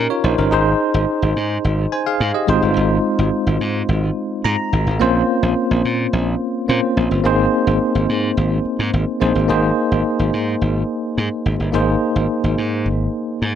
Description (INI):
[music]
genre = 1980s-style pop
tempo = 107 BPM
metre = 4/4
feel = straight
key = Ab major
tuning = A4 = 440 Hz
[part]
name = bell-like tine electric piano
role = accompaniment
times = 0.0-13.6 s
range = Ab3 to Bb5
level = -18 LUFS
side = equal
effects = fast stereo tremolo
[part]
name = glassy slap bass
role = bass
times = 0.0-13.5 s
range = G1 to Bb2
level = -19 LUFS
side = equal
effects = none
[sound]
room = light reverb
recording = none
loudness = -16 LUFS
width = side -9 dB against mid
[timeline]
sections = 0.0-9.5 A section; 9.5-13.6 B section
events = tine electric piano fill 4.2-5.0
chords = 0.0 Eb; 0.5 Ab; 2.5 Fm7; 5.0 Bbmadd9; 7.2 Abadd9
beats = | 0.52 1.08 1.64 2.20 | 2.76 3.33 3.88 4.45 | 5.01 5.57 6.13 6.69 | 7.25 7.81 8.37 8.93 | 9.49 10.05 10.61 11.18 | 11.74 12.30 12.86 13.42